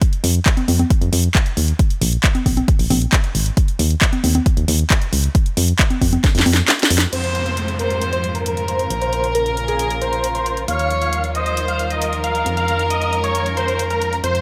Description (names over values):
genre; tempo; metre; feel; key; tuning
uplifting trance; 135 BPM; 4/4; straight; F minor; A4 = 440 Hz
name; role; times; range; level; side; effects
electronic kick drum; drums; 0.0-6.3 s; none; -18 LUFS; equal; overdrive
house drum kit; drums; 0.0-14.4 s; congas, crash cymbal, handclaps, hi-hat, snare drum; -22 LUFS; equal; overdrive, sidechain pumping on hats, sidechain pumping on perc, sidechain pumping on cymbals
solid FM bass; bass; 0.2-14.4 s; Ab1 to F2; -23 LUFS; equal; sidechain pumping
big supersaw lead; melody; 7.1-14.4 s; Ab4 to F5; -25 LUFS; equal; phaser, cassette tape, sidechain pumping, low-pass filter, digital delay
rich chamber violin section; second line; 7.1-14.4 s; Bb4 to Db5; -25 LUFS; equal; delay
warm studio string section; sustained chords; 7.1-14.4 s; Ab2 to F4; -32 LUFS; equal; sidechain pumping, low-pass filter
downlifter; sound effects; 7.1-10.7 s; none; -33 LUFS; equal; none
room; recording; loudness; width
light reverb, digital ambience; none; -18 LUFS; mono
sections
0.0-7.1 A section; 7.1-14.4 B section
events
drum fill 6.2-7.1; kick drops out 6.7-7.1; filter sweep on supersaw synth 7.1-14.4; filter sweep on string section 7.1-14.4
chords
0.0 N.C.; 7.1 Fm; 8.9 Bbm; 10.7 Ebadd9; 12.5 Dbadd9/F